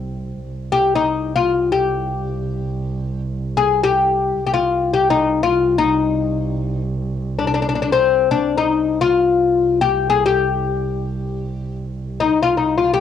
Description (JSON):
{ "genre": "Arabic maqam ensemble", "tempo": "free time", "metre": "none", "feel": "none", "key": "C minor", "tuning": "A4 = 440 Hz", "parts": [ { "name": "dark double bass", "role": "drone", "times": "0.0-13.0 s", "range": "C2", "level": "-25 LUFS", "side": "right 2 dB", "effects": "cassette tape" }, { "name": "oud", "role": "melody", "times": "0.7-13.0 s", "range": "C4 to Ab4", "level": "-16 LUFS", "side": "left 5 dB", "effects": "none" } ], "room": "moderate studio reverb, RT60 0.6 s", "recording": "home recording on cassette", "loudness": "-16 LUFS", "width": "side -9 dB against mid", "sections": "0.4-13.0 A section", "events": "none", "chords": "none" }